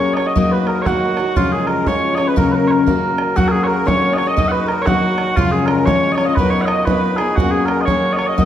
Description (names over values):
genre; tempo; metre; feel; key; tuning
celtic folk, Celtic polka; 120 BPM; 2/4; swing 61% on 8ths; F# major; A4 = 440 Hz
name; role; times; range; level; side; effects
mellow small bagpipes; melody; 0.0-8.5 s; E#4 to F#5; -19 LUFS; right 1 dB; none
hammered dulcimer; second line; 0.0-8.5 s; E#4 to E#5; -24 LUFS; right 5 dB; none
musette accordion; second line; 0.0-8.5 s; E#4 to D#5; -27 LUFS; left 1 dB; tape echo
picked steel-string acoustic guitar; accompaniment; 0.0-8.5 s; F#2 to A#4; -18 LUFS; left 4 dB; none
bodhran; percussion; 0.2-8.5 s; none; -22 LUFS; right 2 dB; none
room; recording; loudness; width
wet recital hall reverb, RT60 1.8 s; none; -14 LUFS; side -10 dB against mid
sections
0.0-3.4 A section; 3.4-8.5 A section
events
none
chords
0.4 D#m/F#; 1.4 C#/F#; 2.4 F#; 3.4 F#add9; 4.4 D#m/F#; 5.4 C#/F#; 6.4 Bmaj7/F#; 7.4 F#add9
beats
| 0.36 0.86 | 1.36 1.86 | 2.37 2.87 | 3.37 3.87 | 4.37 4.87 | 5.37 5.87 | 6.37 6.87 | 7.37 7.87 | 8.38